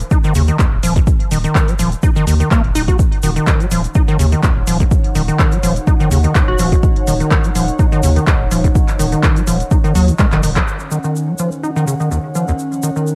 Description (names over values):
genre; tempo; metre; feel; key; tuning
acid house; 125 BPM; 4/4; swing 54% on 16ths; unclear; A4 = 436 Hz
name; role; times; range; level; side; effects
saturated sub bass; bass; 0.0-10.6 s; Eb1 to Eb2; -19 LUFS; equal; sidechain pumping
punchy analog drum machine; drums; 0.0-10.7 s; handclaps, hi-hat; -25 LUFS; equal; none
egg shaker; percussion; 0.0-13.2 s; none; -33 LUFS; equal; none
acid bass, square; riff; 0.1-13.2 s; Eb2 to Gb4; -20 LUFS; equal; tube saturation, analog chorus, sidechain pumping, cassette tape, analog delay
electronic kick drum; drums; 0.1-10.7 s; none; -16 LUFS; equal; none
warm analog pad; sustained chords; 3.0-13.2 s; Eb3 to Gb5; -27 LUFS; equal; chorus, sidechain pumping, cassette tape
glassy wavetable pluck; melody; 6.5-7.0 s; Gb4; -26 LUFS; equal; chorus, cassette tape, analog delay
room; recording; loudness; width
digital ambience; home recording on cassette; -15 LUFS; mono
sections
0.0-10.7 A section; 10.7-13.2 B section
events
filter sweep on acid bass 0.0-10.7; drum fill 10.3-10.7; band accent 10.6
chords
0.0 Ebm7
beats
0.11 0.59 | 1.07 1.55 2.03 2.51 | 2.99 3.47 3.95 4.43 | 4.91 5.39 5.87 6.35 | 6.83 7.31 7.79 8.27 | 8.75 9.23 9.71 10.19 | 10.67 11.15 11.63 12.11 | 12.59 13.07